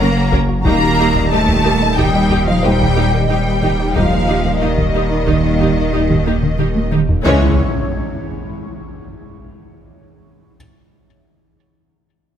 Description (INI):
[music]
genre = cinematic, hybrid orchestral and electronic film score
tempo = 91 BPM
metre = 5/4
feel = straight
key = unclear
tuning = A4 = 442 Hz
[part]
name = warm symphonic violin section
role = melody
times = 0.0-7.6 s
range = C#5 to A#5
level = -23 LUFS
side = left 2 dB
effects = none
[part]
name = warm symphonic violin section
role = second line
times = 0.0-7.6 s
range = C#4 to A#5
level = -23 LUFS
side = left 2 dB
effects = none
[part]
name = warm symphonic viola section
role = accompaniment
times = 0.0-7.6 s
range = E3 to A#4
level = -24 LUFS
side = right 2 dB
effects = none
[part]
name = phased analog pad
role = sustained chords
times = 0.0-7.6 s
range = A#2 to D#5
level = -22 LUFS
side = left 1 dB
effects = phaser, chorus
[part]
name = clear symphonic cello section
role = bass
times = 0.0-7.6 s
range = D#3 to C#4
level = -21 LUFS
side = right 1 dB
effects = none
[part]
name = clear symphonic double bass section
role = bass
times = 0.0-7.6 s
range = F#1 to D#2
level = -21 LUFS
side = right 2 dB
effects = none
[part]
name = saturated sub bass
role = bass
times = 0.0-7.6 s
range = D#1 to C#2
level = -21 LUFS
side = equal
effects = none
[part]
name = dark grand piano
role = texture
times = 0.0-7.3 s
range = A#3 to B#4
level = -31 LUFS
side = equal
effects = none
[part]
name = resonant blip pluck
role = arpeggios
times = 0.3-7.2 s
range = D#3 to F#4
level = -23 LUFS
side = right 4 dB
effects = phaser
[part]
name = taiko ensemble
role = drums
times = 0.3-7.4 s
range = none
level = -22 LUFS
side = equal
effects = none
[part]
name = mellow French horn section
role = sustained chords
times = 0.6-7.5 s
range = G3 to E4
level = -23 LUFS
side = left 4 dB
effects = none
[part]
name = impact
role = sound effects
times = 7.3-10.5 s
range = none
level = -23 LUFS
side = equal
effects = none
[sound]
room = moderate scoring stage reverb, RT60 1.4 s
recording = none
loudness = -12 LUFS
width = side -9 dB against mid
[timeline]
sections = 0.0-7.3 A section; 7.3-10.6 B section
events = drum fill 6.4-7.3; impact 7.3-10.6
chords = 0.0 F#; 0.7 D#; 7.3 C#m